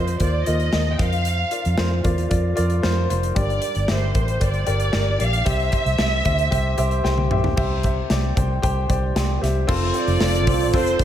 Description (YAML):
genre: piano-driven pop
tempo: 114 BPM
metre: 4/4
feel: straight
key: unclear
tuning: A4 = 439 Hz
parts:
  - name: warm studio violin section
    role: melody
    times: 0.0-11.0 s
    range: C5 to G5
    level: -25 LUFS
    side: right 1 dB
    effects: none
  - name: warm baby grand piano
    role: accompaniment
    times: 0.0-11.0 s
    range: G2 to G5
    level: -25 LUFS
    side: left 2 dB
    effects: wide subtle chorus
  - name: vintage muted fingered electric bass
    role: bass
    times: 0.0-11.0 s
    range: F1 to F2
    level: -22 LUFS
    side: equal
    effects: none
  - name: modern studio drum kit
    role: drums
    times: 0.1-11.0 s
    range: crash cymbal, hi-hat, kick drum, snare drum, toms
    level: -24 LUFS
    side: equal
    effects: none
  - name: mellow French horn section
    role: second line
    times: 9.7-11.0 s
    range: F3 to F4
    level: -25 LUFS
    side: right 11 dB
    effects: tape echo
room: moderate lush hall reverb, RT60 1.8 s, small room ambience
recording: dreamy mix soaked in reverb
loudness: -18 LUFS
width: side -10 dB against mid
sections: 0.0-7.6 A section; 7.6-9.7 B section; 9.7-11.0 C section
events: drum fill 7.0-7.6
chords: 0.0 Ebsus2; 1.0 Bbsus2; 3.4 Gm; 5.5 C; 9.7 F